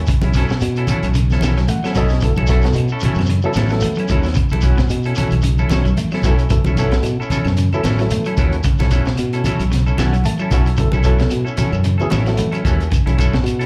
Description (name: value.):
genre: afrobeat.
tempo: 112 BPM.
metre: 4/4.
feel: swing 56% on 16ths.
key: B mixolydian.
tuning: A4 = 441 Hz.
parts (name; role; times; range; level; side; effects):
modern bright fingered electric bass; bass; 0.0-13.7 s; A1 to B2; -20 LUFS; equal; none.
electric guitar at the edge of break-up; arpeggios; 0.1-13.6 s; B2 to A3; -27 LUFS; equal; slapback echo.
crunchy breakbeat drum kit; drums; 0.1-13.7 s; hi-hat, kick drum, snare drum; -23 LUFS; equal; none.
claves; percussion; 0.1-13.6 s; none; -39 LUFS; equal; none.
shekere; percussion; 0.1-13.7 s; none; -31 LUFS; equal; none.
semi-hollow electric guitar; stabs; 0.2-13.7 s; F#3 to A4; -27 LUFS; equal; vibrato effect, slapback echo.
congas; percussion; 0.2-13.5 s; none; -26 LUFS; equal; slapback echo.
barky reed electric piano; accompaniment; 1.7-12.6 s; F#3 to A5; -26 LUFS; equal; overdrive, fast tremolo, slapback echo.
room: studio reverb.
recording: live gig heard through the venue's PA, club reverb.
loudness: -17 LUFS.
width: mono.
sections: 0.0-13.7 A section.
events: reed electric piano fill 1.4-2.2, 9.7-10.8.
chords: 0.0 B9sus4.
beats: | 0.08 0.61 1.15 1.69 | 2.22 2.76 3.29 3.83 | 4.36 4.90 5.43 5.97 | 6.50 7.04 7.57 8.11 | 8.64 9.18 9.71 10.25 | 10.78 11.32 11.85 12.39 | 12.92 13.46.